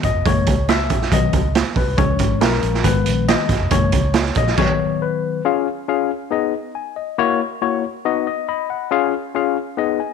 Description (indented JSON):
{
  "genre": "uptempo 1960s-style soul",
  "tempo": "139 BPM",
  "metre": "4/4",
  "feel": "straight",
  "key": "Db mixolydian",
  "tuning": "A4 = 441 Hz",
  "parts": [
    { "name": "tine electric piano", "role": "accompaniment", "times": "0.0-10.1 s", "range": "Eb3 to Cb6", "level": "-19 LUFS", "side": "left 10 dB", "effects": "overdrive" },
    { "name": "vintage muted fingered electric bass", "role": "bass", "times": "0.0-4.5 s", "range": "F1 to Db2", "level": "-21 LUFS", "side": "right 1 dB", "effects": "none" },
    { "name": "raw garage drum kit", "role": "drums", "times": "0.0-4.7 s", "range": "crash cymbal, hi-hat, kick drum, snare drum", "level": "-18 LUFS", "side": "right 5 dB", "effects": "none" }
  ],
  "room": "moderate echo chamber reverb, RT60 1.4 s, studio ambience",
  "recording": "1960s-style stereo",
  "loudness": "-16 LUFS",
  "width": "side -6 dB against mid",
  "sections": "0.0-5.4 A section; 5.4-10.1 B section",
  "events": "tine electric piano solo 0.0-5.4; stop 4.6-5.4; tine electric piano fill 8.0-8.9",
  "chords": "0.3 Gb7; 1.1 Cb; 2.0 Db; 2.9 Abm; 3.7 Gb7; 4.6 Cb; 5.4 Db; 6.3 Abm; 7.2 Gb7; 8.0 Cb; 8.9 Db",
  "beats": "| 0.26 0.69 1.12 1.55 | 1.99 2.42 2.85 3.28 | 3.72 4.15 4.58 5.01 | 5.45 5.88 6.31 6.74 | 7.18 7.61 8.04 8.47 | 8.91 9.34 9.77"
}